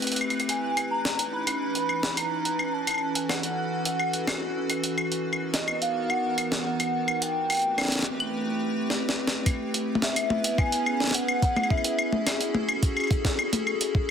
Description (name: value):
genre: IDM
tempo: 107 BPM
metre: 4/4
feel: straight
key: unclear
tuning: A4 = 440 Hz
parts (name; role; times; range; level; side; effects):
- icy glass pad; sustained chords; 0.0-14.1 s; E3 to B4; -29 LUFS; equal; chorus, built-in reverb
- jungle sampler-style drum kit; drums; 0.0-13.9 s; claves, hi-hat, snare drum, toms; -27 LUFS; left 1 dB; none
- pulsing gated texture; texture; 0.0-8.3 s; F#6; -42 LUFS; right 1 dB; chorus, built-in reverb, sidechain pumping
- warbly nostalgic lead; melody; 0.5-12.8 s; D#5 to B5; -30 LUFS; equal; wide subtle chorus, dub echo
- electronic kick drum; drums; 9.5-14.1 s; none; -24 LUFS; equal; none
room: moderate plate reverb, RT60 1.8 s, digital ambience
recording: dense, heavily limited modern master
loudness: -24 LUFS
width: side -7 dB against mid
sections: 0.0-9.5 A section; 9.5-14.1 B section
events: drum fill 8.9-9.5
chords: 0.5 C#m9; 2.7 F#m7; 5.0 Bmaj7; 7.2 Am9; 9.5 C#m7; 11.7 F#m9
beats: | 0.49 1.05 1.61 2.17 | 2.73 3.29 3.85 4.42 | 4.98 5.54 6.10 6.66 | 7.22 7.78 8.34 8.90 | 9.46 10.02 10.58 11.14 | 11.71 12.27 12.83 13.39 | 13.95